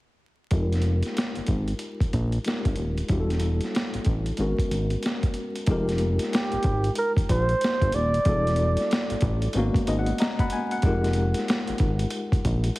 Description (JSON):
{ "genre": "R&B, neo-soul", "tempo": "93 BPM", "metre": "4/4", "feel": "swing 61% on 16ths", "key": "unclear", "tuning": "A4 = 440 Hz", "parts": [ { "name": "tine electric piano", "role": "accompaniment", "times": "0.5-12.8 s", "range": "G3 to Cb6", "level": "-29 LUFS", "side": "left 2 dB", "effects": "overdrive, fast tremolo, low-pass filter" }, { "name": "fat analog bass", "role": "bass", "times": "0.5-12.7 s", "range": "Eb1 to Bb1", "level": "-25 LUFS", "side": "equal", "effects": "none" }, { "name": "boom bap sampler-style drum kit", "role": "drums", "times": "0.5-12.8 s", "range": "hi-hat, kick drum, snare drum", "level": "-27 LUFS", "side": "equal", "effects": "none" }, { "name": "breathy flugelhorn", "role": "melody", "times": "6.3-9.2 s", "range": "G4 to D5", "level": "-26 LUFS", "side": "right 2 dB", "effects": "tape echo" } ], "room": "digital ambience", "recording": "heavily compressed radio sound, vinyl crackle", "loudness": "-22 LUFS", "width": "side -19 dB against mid", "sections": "0.5-5.7 A section; 5.7-12.8 B section", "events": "filter sweep on tine electric piano 0.5-5.7; tine electric piano fill 9.5-10.8", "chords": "0.5 Fm11; 3.1 Em11; 4.4 Abm11; 5.7 Fm11; 8.2 Em11; 9.5 Abm11; 10.8 Fm11", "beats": "| 0.51 1.15 1.80 2.44 | 3.09 3.73 4.38 5.02 | 5.67 6.31 6.96 7.60 | 8.25 8.89 9.54 10.19 | 10.83 11.47 12.12 12.77" }